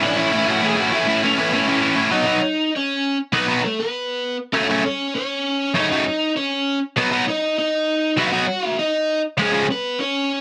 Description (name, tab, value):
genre	punk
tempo	198 BPM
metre	4/4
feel	straight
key	unclear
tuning	A4 = 440 Hz
part	overdriven electric guitar	melody	0.0-10.4 s	G#3 to G#5	-23 LUFS	equal	none
part	distorted electric guitar	riff	0.0-9.7 s	F#2 to E4	-20 LUFS	equal	overdrive
room	light reverb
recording	dense, heavily limited modern master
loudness	-20 LUFS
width	mono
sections	0.0-2.1 A section; 2.1-10.4 B section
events	none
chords	0.0 A; 2.1 B; 4.5 F#m; 7.0 B; 9.4 C#